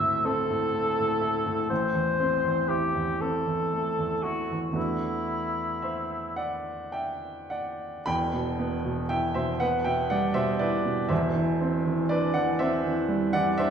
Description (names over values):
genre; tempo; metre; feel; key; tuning
classical, impressionist duo for cor anglais and grand piano; 34-42 BPM (dotted quarters); 6/8; rubato; unclear; A4 = 440 Hz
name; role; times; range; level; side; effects
mellow cor anglais; melody; 0.0-6.3 s; E4 to E5; -27 LUFS; left 2 dB; none
clear baby grand piano; accompaniment; 0.0-13.7 s; E1 to B5; -26 LUFS; right 1 dB; none
room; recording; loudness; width
wet recital hall reverb, RT60 1.4 s; heard from further back in the room; -25 LUFS; side -7 dB against mid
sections
0.0-8.1 A section; 8.1-13.7 A section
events
none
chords
0.0 Am/D; 1.7 Am; 4.8 E9sus4; 8.1 Cadd9/E